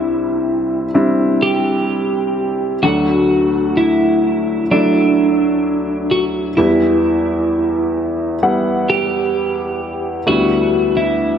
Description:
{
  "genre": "pop ballad",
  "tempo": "64 BPM",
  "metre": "4/4",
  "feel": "straight",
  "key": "unclear",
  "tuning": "A4 = 441 Hz",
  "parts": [
    { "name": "twelve-string electric guitar", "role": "melody", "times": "0.0-11.4 s", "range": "D4 to G4", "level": "-16 LUFS", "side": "right 1 dB", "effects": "spring reverb" },
    { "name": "warm upright piano", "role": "accompaniment", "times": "0.0-11.4 s", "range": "C2 to F#5", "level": "-17 LUFS", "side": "left 1 dB", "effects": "none" }
  ],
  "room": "moderate lush hall reverb, RT60 2.4 s",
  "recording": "none",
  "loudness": "-14 LUFS",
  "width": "side -8 dB against mid",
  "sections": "0.0-11.4 A section",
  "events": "none",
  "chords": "0.0 Cadd9; 2.8 D; 6.6 Em; 10.3 G6/D",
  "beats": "0.01 0.95 1.89 | 2.83 3.78 4.71 5.65 | 6.58 7.51 8.43 9.35 | 10.28 11.20"
}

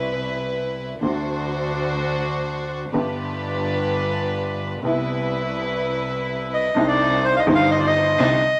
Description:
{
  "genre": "tango",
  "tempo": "126 BPM",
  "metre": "4/4",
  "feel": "rubato",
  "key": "C major",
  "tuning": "A4 = 440 Hz",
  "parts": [
    { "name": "warm upright piano", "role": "accompaniment", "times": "0.0-8.4 s", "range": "G1 to G4", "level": "-27 LUFS", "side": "equal", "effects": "none" },
    { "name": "rich chamber string section", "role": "stabs", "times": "0.0-8.4 s", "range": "D4 to C5", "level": "-28 LUFS", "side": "equal", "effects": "none" },
    { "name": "clear double bass", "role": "bass", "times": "0.0-8.4 s", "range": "G1 to D2", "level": "-30 LUFS", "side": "equal", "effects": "none" },
    { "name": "bandoneon", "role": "melody", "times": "6.5-8.6 s", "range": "C5 to F5", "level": "-21 LUFS", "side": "equal", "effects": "none" }
  ],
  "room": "moderate studio reverb, RT60 0.7 s",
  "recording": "none",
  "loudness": "-22 LUFS",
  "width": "mono",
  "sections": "0.0-6.8 A section; 6.8-8.6 B section",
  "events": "none",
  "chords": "0.0 Cmaj7; 1.0 D7; 2.9 G; 4.8 Cmaj7; 6.8 Cmadd9",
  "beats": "0.06 0.54 | 1.02 1.50 1.98 2.45 | 2.93 3.40 3.88 4.36 | 4.84 5.32 5.80 6.28 | 6.76 7.24 7.72 8.19"
}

